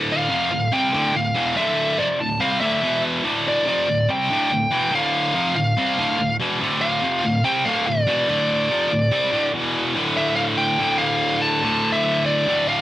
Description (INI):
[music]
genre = metal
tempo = 143 BPM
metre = 4/4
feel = straight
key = D minor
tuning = A4 = 442 Hz
[part]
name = high-gain distorted guitar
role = riff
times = 0.0-12.8 s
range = D2 to C4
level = -20 LUFS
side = equal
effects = distortion
[part]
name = high-gain lead guitar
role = melody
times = 0.1-12.8 s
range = D5 to A5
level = -21 LUFS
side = equal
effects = distortion, cassette tape
[sound]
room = light reverb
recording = home recording on cassette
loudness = -18 LUFS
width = side -14 dB against mid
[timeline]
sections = 0.0-10.0 A section; 10.0-12.8 B section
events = none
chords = 0.0 Dm; 2.8 E5; 3.2 Dm; 9.5 E5; 10.0 Dm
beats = 0.30 0.72 1.15 | 1.57 1.99 2.41 2.83 | 3.25 3.67 4.09 4.51 | 4.93 5.35 5.77 6.19 | 6.61 7.03 7.45 7.87 | 8.29 8.70 9.12 9.54 | 9.96 10.38 10.80 11.22 | 11.64 12.05 12.47